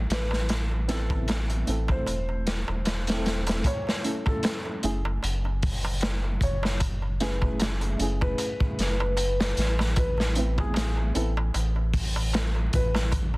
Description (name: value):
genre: trip hop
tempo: 76 BPM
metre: 4/4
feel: swing 55% on 16ths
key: unclear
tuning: A4 = 440 Hz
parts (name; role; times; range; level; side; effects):
- round analog bass; bass; 0.0-13.4 s; E1 to A1; -27 LUFS; equal; none
- felt-muted upright piano; melody; 0.1-13.1 s; G#4 to C#5; -34 LUFS; left 1 dB; tape echo
- crunchy breakbeat drum kit; drums; 0.1-13.3 s; hi-hat, kick drum, snare drum; -28 LUFS; equal; none
- darbuka; percussion; 0.3-13.4 s; none; -38 LUFS; right 2 dB; none
- dark upright piano; accompaniment; 0.9-11.3 s; A3 to A4; -33 LUFS; right 1 dB; tremolo, tape echo
room: light reverb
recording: dense, heavily limited modern master, vinyl crackle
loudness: -24 LUFS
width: side -23 dB against mid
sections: 0.0-3.7 A section; 3.7-13.4 B section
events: kick drops out 2.1-3.7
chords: 0.0 Amadd9; 3.7 F#m7; 10.0 Amadd9